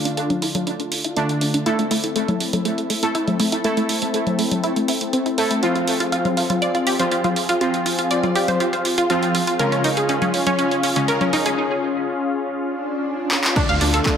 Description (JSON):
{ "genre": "melodic techno", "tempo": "121 BPM", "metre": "4/4", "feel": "straight", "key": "D minor", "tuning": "A4 = 441 Hz", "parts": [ { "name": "warm analog pad", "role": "sustained chords", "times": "0.0-14.2 s", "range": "C4 to F5", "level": "-25 LUFS", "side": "left 3 dB", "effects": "lush chorus, sidechain pumping" }, { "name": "synth brass stab", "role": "stabs", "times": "0.0-14.2 s", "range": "C#3 to A4", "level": "-24 LUFS", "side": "right 2 dB", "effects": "chorus, sidechain pumping, dub echo" }, { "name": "wide unison pluck", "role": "arpeggios", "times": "0.1-14.2 s", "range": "A3 to F5", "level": "-22 LUFS", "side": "equal", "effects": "sidechain pumping, tape echo" }, { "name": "punchy analog drum machine", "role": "drums", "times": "0.1-14.2 s", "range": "congas, crash cymbal, handclaps, hi-hat", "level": "-24 LUFS", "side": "left 1 dB", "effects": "overdrive" }, { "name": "swell and downlifter", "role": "sound effects", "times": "12.7-14.2 s", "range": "none", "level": "-28 LUFS", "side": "right 2 dB", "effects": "none" }, { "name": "electronic kick drum", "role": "drums", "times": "13.6-14.2 s", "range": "none", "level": "-21 LUFS", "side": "equal", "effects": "none" }, { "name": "round analog bass", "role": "bass", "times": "13.7-14.0 s", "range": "D2", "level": "-21 LUFS", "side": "equal", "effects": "sidechain pumping" } ], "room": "wet echo chamber reverb, RT60 2.2 s", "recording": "echo-heavy mix", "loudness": "-18 LUFS", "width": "side -8 dB against mid", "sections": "0.0-13.6 A section", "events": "build-up 0.0-13.6; filter sweep on synth pluck 0.0-13.6; break 11.6-13.6; swell 12.7-13.6; drum fill 13.3", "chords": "0.0 Dm; 1.7 Am; 5.6 Fm; 9.6 C#; 13.6 Dm" }